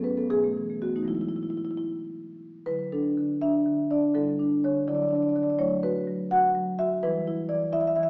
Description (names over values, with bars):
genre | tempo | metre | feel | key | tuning
classical, contemporary piece for solo marimba | 76-86 BPM (dotted quarters) | 6/8 | rubato | D major | A4 = 440 Hz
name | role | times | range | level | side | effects
marimba with soft mallets | solo | 0.0-8.1 s | G#2 to F#5 | -27 LUFS | equal | none
room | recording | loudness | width
wet stone room reverb, RT60 1.4 s | heard from further back in the room, small speaker sound | -26 LUFS | mono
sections
0.0-2.7 A section; 2.7-8.1 B section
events
none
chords
0.3 B7sus4; 1.1 Eadd9; 2.7 Dadd9; 4.1 Em7/D; 4.9 Dadd9; 5.6 F#m7; 7.0 Em